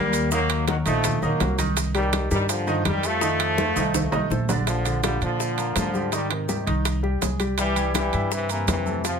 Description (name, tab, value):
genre	latin, salsa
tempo	165 BPM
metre	4/4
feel	straight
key	Bb major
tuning	A4 = 439 Hz
part	bright trombone section	melody	0.0-9.2 s	C3 to Bb3	-25 LUFS	left 1 dB	none
part	clear grand piano	accompaniment	0.0-9.2 s	D3 to E5	-28 LUFS	right 1 dB	none
part	upright bass	bass	0.0-9.2 s	Bb1 to Bb2	-26 LUFS	equal	none
part	congas	percussion	0.1-9.2 s	none	-31 LUFS	left 2 dB	none
part	maracas	percussion	0.1-9.2 s	none	-34 LUFS	right 7 dB	none
part	timbales	percussion	0.1-9.2 s	none	-30 LUFS	right 7 dB	none
part	bongos	percussion	0.3-9.2 s	none	-32 LUFS	left 10 dB	none
room	moderate studio reverb, RT60 0.5 s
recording	none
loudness	-21 LUFS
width	side -6 dB against mid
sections	0.0-4.7 A section; 4.7-9.2 B section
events	drum fill 3.6-4.7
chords	0.3 Ebmadd9; 1.8 Cm11; 3.2 F7; 4.7 Bb; 6.1 Abmaj7; 7.6 C7